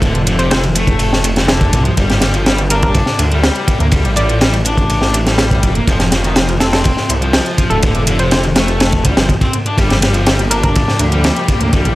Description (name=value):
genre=breakbeat, breaks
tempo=123 BPM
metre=4/4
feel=straight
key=G minor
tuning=A4 = 440 Hz
part: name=hollow square pluck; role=melody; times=0.0-10.7 s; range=A4 to D5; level=-22 LUFS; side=equal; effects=chorus, small speaker sound, tape echo
part: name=thick fuzz guitar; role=riff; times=0.0-11.9 s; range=C3 to D4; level=-19 LUFS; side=left 2 dB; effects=distortion, tube saturation, tape echo
part: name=detuned saw bass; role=bass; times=0.0-11.9 s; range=D1 to D2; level=-16 LUFS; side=equal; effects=none
part: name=crunchy breakbeat drum kit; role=drums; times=0.0-11.8 s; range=kick drum, ride cymbal, snare drum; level=-14 LUFS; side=equal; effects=none
part: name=electronic hi-hat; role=drums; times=0.0-11.9 s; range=none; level=-21 LUFS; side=right 1 dB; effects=overdrive
part: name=rich chamber string section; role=sustained chords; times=9.8-11.9 s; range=F3 to G4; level=-22 LUFS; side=left 1 dB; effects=sidechain pumping
room=little or no reverb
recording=none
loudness=-11 LUFS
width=side -17 dB against mid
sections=0.0-11.9 A section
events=none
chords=0.0 Dm7; 2.0 G7(no3); 5.9 F; 7.8 Dm; 9.8 Gm7